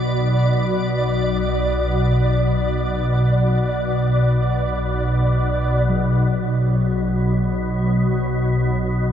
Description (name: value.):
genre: dark ambient drone.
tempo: free time.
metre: none.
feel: none.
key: B minor.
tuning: A4 = 440 Hz.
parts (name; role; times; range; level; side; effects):
organ-like drone; drone; 0.0-9.1 s; B1 to B2; -18 LUFS; equal; ensemble chorus, built-in reverb.
flickering grainy texture; texture; 0.0-9.1 s; C#5 to D5; -26 LUFS; right 1 dB; built-in reverb.
quartz singing bowl; arpeggios; 5.9-9.1 s; F#3; -24 LUFS; equal; diffuse ambient delay.
room: wet huge ambient reverb, RT60 8.4 s.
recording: none.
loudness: -17 LUFS.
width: side -9 dB against mid.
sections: 0.0-5.9 A section; 5.9-9.1 B section.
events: none.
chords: 0.0 Bm; 5.9 Bsus2.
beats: free time.